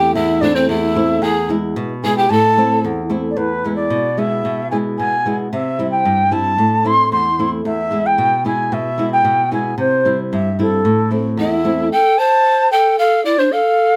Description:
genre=andean folk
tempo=112 BPM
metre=2/4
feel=straight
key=unclear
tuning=A4 = 440 Hz
part: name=reedy large quena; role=melody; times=0.0-14.0 s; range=A4 to C6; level=-18 LUFS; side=equal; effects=none
part: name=breathy pan flute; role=second line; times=0.0-2.8, 11.4-14.0 s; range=C4 to C5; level=-20 LUFS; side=equal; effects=none
part: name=flamenco guitar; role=accompaniment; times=0.0-11.9 s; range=E2 to E4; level=-21 LUFS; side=equal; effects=none
room=light reverb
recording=none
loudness=-16 LUFS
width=mono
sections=0.0-3.4 A section; 3.4-11.9 B section; 11.9-14.0 A section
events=none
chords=0.0 Am; 1.2 E; 2.3 Am; 3.4 E; 5.5 C; 6.6 Am; 7.7 E; 9.8 C; 10.9 Am; 11.9 N.C.

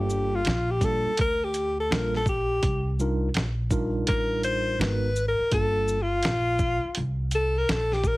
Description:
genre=hip hop, jazz-hop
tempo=83 BPM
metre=4/4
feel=swing 63% on 16ths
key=unclear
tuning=A4 = 440 Hz
part: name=breathy alto saxophone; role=melody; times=0.0-8.2 s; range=F4 to C5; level=-26 LUFS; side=left 1 dB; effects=plate reverb
part: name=mellow tine electric piano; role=accompaniment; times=0.0-6.0 s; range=G3 to Bb4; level=-30 LUFS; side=right 1 dB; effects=fast stereo tremolo, plate reverb
part: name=upright bass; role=bass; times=0.0-8.2 s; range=G1 to D2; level=-28 LUFS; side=equal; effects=none
part: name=dusty soul sampler-style drum kit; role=drums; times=0.1-8.2 s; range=hi-hat, kick drum, shaker, snare drum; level=-28 LUFS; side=equal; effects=overdrive
room=light reverb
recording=heavily compressed radio sound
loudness=-23 LUFS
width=side -20 dB against mid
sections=0.0-8.2 A section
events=alto saxophone solo 0.0-8.2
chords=0.0 Gm9; 2.6 Cm11; 4.8 Abm9; 5.5 Gm9

